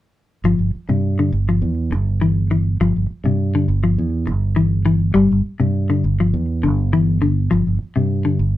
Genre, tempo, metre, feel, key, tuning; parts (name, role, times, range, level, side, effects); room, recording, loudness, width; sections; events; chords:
afrobeat; 102 BPM; 4/4; straight; A4 = 437 Hz
fingered electric bass; bass; 0.4-8.6 s; G1 to G2; -18 LUFS; right 2 dB
semi-hollow electric guitar; arpeggios; 0.5-8.5 s; C3 to G3; -18 LUFS; left 4 dB
light reverb; band playing live in one room; -16 LUFS; side -14 dB against mid
0.5-8.6 A section
0.5 G7sus4